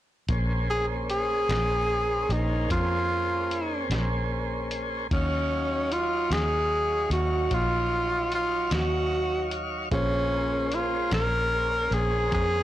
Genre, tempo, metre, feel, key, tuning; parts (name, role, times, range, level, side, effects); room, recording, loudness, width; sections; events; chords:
slow blues; 50 BPM (dotted quarters); 12/8; straight; Bb minor; A4 = 440 Hz
tonewheel organ; sustained chords; 0.3-12.6 s; Gb3 to F5; -33 LUFS; equal; slow rotary speaker
vintage muted fingered electric bass; bass; 0.3-12.6 s; Bb1 to F2; -29 LUFS; equal
lo-fi sampler-style drum kit; drums; 0.3-12.5 s; hi-hat, kick drum, snare drum; -31 LUFS; equal
clear tenor saxophone; melody; 0.7-12.6 s; Db4 to Bb4; -26 LUFS; equal; slapback echo
clear grand piano; accompaniment; 9.9-12.6 s; Db4 to C5; -37 LUFS; right 4 dB
light reverb; blown-out, overdriven recording, overdrive; -24 LUFS; side -13 dB against mid
0.3-12.6 A section
0.3 Bbm9; 5.1 Ebm9; 9.9 Bbm9